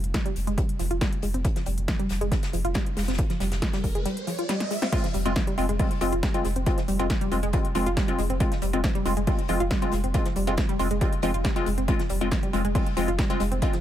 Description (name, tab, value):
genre	driving peak-time techno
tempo	138 BPM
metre	4/4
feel	straight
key	F minor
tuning	A4 = 440 Hz
part	saturated sub bass	bass	0.0-13.6 s	F1	-28 LUFS	equal	overdrive, sidechain pumping, low-pass filter
part	techno drum kit	drums	0.0-13.8 s	crash cymbal, hi-hat, snare drum	-34 LUFS	equal	none
part	wide unison pluck	riff	0.1-13.8 s	F3 to F4	-30 LUFS	equal	tube saturation, sidechain pumping, ping-pong delay
part	electronic kick drum	drums	0.1-13.7 s	none	-26 LUFS	equal	none
part	loose indie drum kit	drums	0.1-13.8 s	hi-hat, snare drum	-41 LUFS	left 2 dB	high-pass filter on hats, high-pass filter on snare, high-pass filter on room
part	riser	sound effects	2.6-4.9 s	none	-37 LUFS	right 3 dB	none
part	wavetable chord stab	stabs	4.9-13.8 s	Ab3 to F4	-28 LUFS	left 1 dB	phaser, sidechain pumping, ping-pong delay
room	digital ambience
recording	none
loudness	-23 LUFS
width	side -11 dB against mid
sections	0.0-4.9 A section; 4.9-13.8 B section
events	riser 2.6-4.9; drum fill 4.5-4.9; drop 4.9-13.8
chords	0.0 N.C.; 4.9 Fm